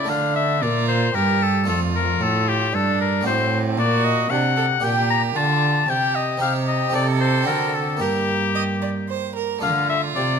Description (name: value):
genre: classical, baroque-style sonata movement with continuo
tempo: 114 BPM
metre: 3/4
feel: straight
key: D minor, G minor from 3.3 s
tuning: A4 = 440 Hz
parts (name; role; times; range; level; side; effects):
- clear oboe; melody; 0.0-10.4 s; G4 to Bb5; -22 LUFS; left 7 dB; none
- warm violin; second line; 0.0-10.4 s; C4 to Eb5; -25 LUFS; right 9 dB; none
- harpsichord; accompaniment; 0.0-10.4 s; F2 to A4; -28 LUFS; left 1 dB; none
- dark cello; bass; 0.0-10.4 s; F2 to D3; -23 LUFS; right 2 dB; none
room: moderate recital hall reverb, RT60 1.7 s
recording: close, detailed microphones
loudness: -18 LUFS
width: side -6 dB against mid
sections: 0.0-9.6 A section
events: none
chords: 0.1 Dm; 1.7 Dm/F; 3.3 D7/A; 4.8 Gm/Bb; 6.4 Cm; 6.9 Adim/C; 7.5 D7; 8.0 Gm; 9.6 Dm